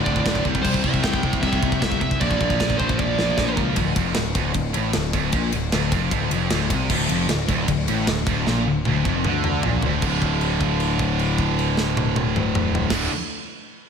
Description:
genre	heavy metal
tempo	154 BPM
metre	4/4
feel	straight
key	D minor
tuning	A4 = 438 Hz
part	high-gain lead guitar	melody	0.0-3.6 s	C5 to G5	-26 LUFS	right 2 dB	distortion, slapback echo, digital delay
part	sludgy distorted guitar	riff	0.0-13.1 s	D2 to G3	-27 LUFS	left 9 dB	overdrive
part	thick fuzz guitar	riff	0.0-3.8, 6.9-13.1 s	D2 to C4	-27 LUFS	equal	distortion
part	tight distorted guitar	riff	0.0-13.1 s	D2 to C4	-27 LUFS	right 11 dB	distortion, slapback echo
part	fuzz picked electric bass	bass	0.0-13.1 s	D1 to D2	-26 LUFS	equal	overdrive
part	tight metal drum kit	drums	0.1-13.0 s	china cymbal, crash cymbal, kick drum, ride cymbal, snare drum, toms	-24 LUFS	equal	none
room	moderate lush hall reverb, RT60 1.7 s, small room ambience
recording	big arena sound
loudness	-19 LUFS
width	side -6 dB against mid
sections	0.0-3.8 A section; 3.8-10.0 B section; 10.0-13.1 C section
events	drum fill 3.0-3.8, 8.5-10.0; held note 10.0-12.9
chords	0.5 C; 2.2 Bb; 3.8 Dm; 10.0 D5

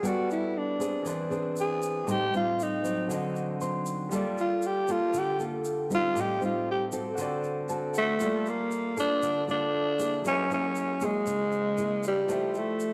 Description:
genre	bossa nova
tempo	118 BPM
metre	4/4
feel	straight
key	unclear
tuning	A4 = 437 Hz
part	growling tenor saxophone	melody	0.0-12.9 s	G3 to G#4	-30 LUFS	equal	none
part	clear grand piano	accompaniment	0.0-12.9 s	D3 to C6	-40 LUFS	equal	none
part	nylon-string guitar	accompaniment	0.0-12.9 s	A2 to A4	-34 LUFS	equal	none
part	egg shaker	percussion	0.0-12.9 s	none	-49 LUFS	equal	none
room	wet echo chamber reverb, RT60 1.9 s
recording	none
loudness	-29 LUFS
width	mono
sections	0.0-8.2 A section; 8.2-12.9 B section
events	tenor saxophone solo 0.0-8.2; grand piano fill 3.4-4.1, 7.4-8.2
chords	0.0 Gmaj9; 1.1 E7b13; 2.1 Am7b5; 3.1 D7b9; 4.1 Gm9; 6.2 Am7b5; 7.2 D7; 8.2 Gm9; 10.2 F#9; 12.3 Fmaj9

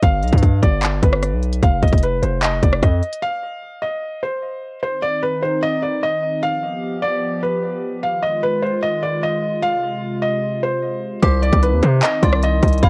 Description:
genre	hip hop, trap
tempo	150 BPM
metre	4/4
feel	half-time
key	C harmonic minor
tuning	A4 = 442 Hz
part	felt-muted upright piano	melody	0.0-12.9 s	B4 to F5	-23 LUFS	equal	cassette tape, analog delay
part	distorted 808-style bass	bass	0.0-3.0, 11.2-12.9 s	F1 to C3	-20 LUFS	equal	distortion
part	trap drum kit	drums	0.0-3.2, 11.2-12.9 s	handclaps, hi-hat, kick drum, rim click	-18 LUFS	equal	cassette tape
part	hollow soft pad	sustained chords	5.0-12.9 s	C3 to G4	-28 LUFS	equal	chorus
part	dark detuned synth bell	second line	11.2-12.9 s	B5 to D6	-29 LUFS	equal	chorus
room	light reverb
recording	home recording on cassette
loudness	-19 LUFS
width	mono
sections	0.0-4.8 A section; 4.8-12.9 B section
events	break 3.2-4.8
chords	0.0 G7; 1.6 Cmadd11/F (rootless); 3.2 N.C.; 4.8 Cm; 6.4 G7; 8.0 Fm7; 9.6 Ab6; 11.2 Cmadd9

